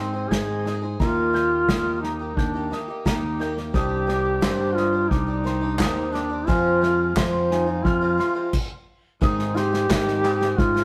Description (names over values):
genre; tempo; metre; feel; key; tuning
indie folk with a building arrangement; 88 BPM; 4/4; straight; unclear; A4 = 439 Hz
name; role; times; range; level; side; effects
mellow duduk; melody; 0.0-10.8 s; C4 to Ab4; -26 LUFS; equal; none
picked twelve-string acoustic guitar; accompaniment; 0.0-10.8 s; F2 to Ab4; -31 LUFS; equal; none
warm upright piano; arpeggios; 0.0-10.8 s; Eb5 to Ab6; -36 LUFS; equal; none
fingered electric bass; bass; 0.0-10.8 s; C2 to Ab2; -29 LUFS; equal; none
unplugged drum kit; drums; 0.3-10.8 s; crash cymbal, kick drum, snare drum; -28 LUFS; equal; none
group handclap; percussion; 4.4-10.4 s; none; -36 LUFS; equal; none
room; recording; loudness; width
moderate stone room reverb, RT60 1.0 s; rough rehearsal-room recording; -23 LUFS; mono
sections
0.0-9.2 A section; 9.2-10.8 B section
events
stop 8.5-9.2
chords
0.0 Ab; 1.0 Eb; 3.7 Cmadd9; 6.5 Fm; 9.2 Ab